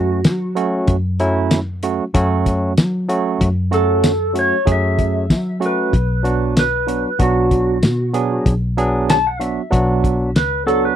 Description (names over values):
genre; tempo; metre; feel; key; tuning
straight-eighth soul blues; 95 BPM; 4/4; swing 56% on 16ths; F# minor; A4 = 435 Hz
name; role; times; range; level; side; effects
clean lap steel guitar; melody; 0.0-11.0 s; F#4 to A5; -19 LUFS; equal; none
barky tine electric piano; accompaniment; 0.0-11.0 s; F#3 to G#4; -19 LUFS; right 3 dB; overdrive, slow stereo tremolo
vintage muted fingered electric bass; bass; 0.0-10.9 s; B1 to F#3; -20 LUFS; left 1 dB; none
cloth-damped thuddy drum kit; drums; 0.2-10.8 s; hi-hat, kick drum, snare drum, tambourine; -17 LUFS; left 1 dB; none
room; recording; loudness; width
little or no reverb; dry, close 1970s-style studio recording; -15 LUFS; side -10 dB against mid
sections
0.0-11.0 A section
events
none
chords
0.0 F#m; 5.9 Bm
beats
0.25 | 0.88 1.51 2.14 2.77 | 3.40 4.04 4.67 5.30 | 5.93 6.56 7.19 7.83 | 8.46 9.09 9.72 10.35